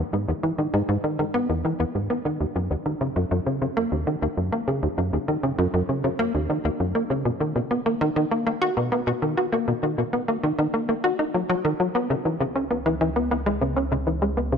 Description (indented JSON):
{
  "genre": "ambient, sequencer-driven space music",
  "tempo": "99 BPM",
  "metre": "4/4",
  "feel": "straight",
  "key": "unclear",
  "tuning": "A4 = 438 Hz",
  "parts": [
    { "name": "tight sequencer bass", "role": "riff", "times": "0.0-14.6 s", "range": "D#2 to F#4", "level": "-22 LUFS", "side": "equal", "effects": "wide subtle chorus, ping-pong delay" },
    { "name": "warm sub bass", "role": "bass", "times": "12.1-14.6 s", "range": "C#2", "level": "-30 LUFS", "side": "equal", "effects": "none" }
  ],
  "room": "wet plate reverb, RT60 2.7 s",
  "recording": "none",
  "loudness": "-22 LUFS",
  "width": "side -6 dB against mid",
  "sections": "0.0-12.1 A section; 12.1-14.6 B section",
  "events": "none",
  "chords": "0.0 Emaj7; 2.4 D#5; 7.3 B; 12.1 C#m"
}